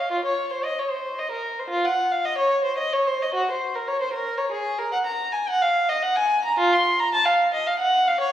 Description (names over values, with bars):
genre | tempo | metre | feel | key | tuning
classical, baroque-style suite movement for unaccompanied violin | 112 BPM | 3/4 | rubato | Bb minor | A4 = 439 Hz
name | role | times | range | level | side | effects
dark violin | solo | 0.0-8.3 s | F4 to C6 | -20 LUFS | equal | none
room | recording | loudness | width
wet recital hall reverb, RT60 1.6 s | heard from further back in the room | -20 LUFS | side -11 dB against mid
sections
0.0-8.3 A section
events
none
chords
none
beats
| 0.10 0.64 1.17 | 1.72 2.26 2.79 | 3.32 3.85 4.38 | 4.92 5.45 6.00 | 6.55 7.11 7.66 | 8.20